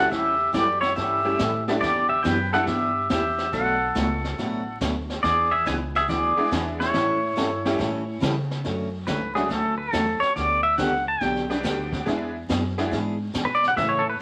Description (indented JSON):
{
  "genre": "country, western swing",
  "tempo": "141 BPM",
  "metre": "4/4",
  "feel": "swing 67% on 8ths",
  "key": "unclear",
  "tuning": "A4 = 442 Hz",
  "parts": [
    { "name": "pedal steel guitar", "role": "melody", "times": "0.0-14.2 s", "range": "E4 to A5", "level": "-25 LUFS", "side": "equal", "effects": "none" },
    { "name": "tack piano", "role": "accompaniment", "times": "0.0-2.7, 6.4-14.0 s", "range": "E3 to A4", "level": "-30 LUFS", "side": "equal", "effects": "none" },
    { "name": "upright bass", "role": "bass", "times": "0.0-14.2 s", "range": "A1 to C#3", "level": "-34 LUFS", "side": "equal", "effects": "none" },
    { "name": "picked steel-string acoustic guitar", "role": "accompaniment", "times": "0.1-14.0 s", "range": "B2 to A4", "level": "-31 LUFS", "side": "equal", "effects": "none" },
    { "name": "vintage brush drum kit", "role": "drums", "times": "0.1-14.2 s", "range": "brushed snare drum, hi-hat, kick drum, snare drum", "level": "-33 LUFS", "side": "equal", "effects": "none" }
  ],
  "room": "wet studio reverb, RT60 0.7 s",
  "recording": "vinyl crackle",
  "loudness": "-24 LUFS",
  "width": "mono",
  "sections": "0.0-8.7 A section; 8.7-14.2 B section",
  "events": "pedal steel guitar solo 8.7-14.2",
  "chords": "0.1 A7; 1.8 Em7; 3.5 Bm9; 5.2 E7; 6.9 A7; 8.7 Dmaj7; 10.4 Gmaj7; 12.1 E7"
}